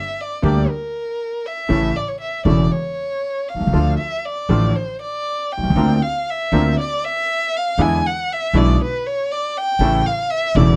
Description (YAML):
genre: tango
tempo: 119 BPM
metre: 4/4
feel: rubato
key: D minor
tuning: A4 = 441 Hz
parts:
  - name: dark violin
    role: second line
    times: 0.0-10.8 s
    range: Bb4 to G#5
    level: -24 LUFS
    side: equal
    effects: none
  - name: warm concert grand piano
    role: accompaniment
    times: 0.4-10.8 s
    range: E1 to G4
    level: -20 LUFS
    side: equal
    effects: none
  - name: bandoneon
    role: stabs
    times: 0.4-10.8 s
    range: Bb3 to Bb4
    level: -31 LUFS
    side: equal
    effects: none
  - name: upright bass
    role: bass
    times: 0.4-10.8 s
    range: E1 to E2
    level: -22 LUFS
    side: equal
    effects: none
room: light reverb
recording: close, detailed microphones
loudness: -20 LUFS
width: mono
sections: 0.0-10.8 A section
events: violin solo 0.0-10.8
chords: 0.0 Gm; 1.7 A; 3.7 Dm; 5.8 Bbadd9/D; 7.8 E7; 9.8 A